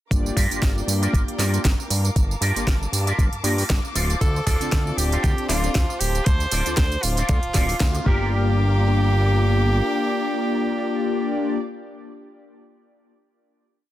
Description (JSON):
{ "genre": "nu-disco, nu disco", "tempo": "117 BPM", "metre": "4/4", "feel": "swing 56% on 16ths", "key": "G minor", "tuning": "A4 = 440 Hz", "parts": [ { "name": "mellow synth brass", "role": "accompaniment", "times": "0.1-11.6 s", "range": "Bb3 to D5", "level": "-26 LUFS", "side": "left 2 dB", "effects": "chorus" }, { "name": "dark chamber string section", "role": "sustained chords", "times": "0.1-11.6 s", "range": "Bb4 to D6", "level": "-34 LUFS", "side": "left 1 dB", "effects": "sidechain pumping" }, { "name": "fat analog bass", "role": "bass", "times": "0.1-9.8 s", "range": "D1 to G2", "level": "-22 LUFS", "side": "equal", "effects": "none" }, { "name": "electronic kick drum", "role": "drums", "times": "0.1-8.2 s", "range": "none", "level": "-21 LUFS", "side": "equal", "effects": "studio ambience" }, { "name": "house drum kit", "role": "drums", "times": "0.1-8.0 s", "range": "hi-hat, snare drum, tambourine", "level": "-27 LUFS", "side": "right 2 dB", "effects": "studio ambience" }, { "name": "electric guitar with an envelope filter", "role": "riff", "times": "0.4-11.6 s", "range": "F4 to D5", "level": "-30 LUFS", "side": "right 1 dB", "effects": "ensemble chorus" }, { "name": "clear tenor saxophone", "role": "melody", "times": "4.2-11.6 s", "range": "F4 to C5", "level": "-27 LUFS", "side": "right 1 dB", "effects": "analog delay" } ], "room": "digital ambience", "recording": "dense, heavily limited modern master", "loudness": "-19 LUFS", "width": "side -14 dB against mid", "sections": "0.1-8.3 drop; 8.3-12.4 final hit", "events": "drop 0.1-8.3; band accent 7.8", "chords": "0.1 Gm7; 4.0 Dm7; 8.1 Gm7" }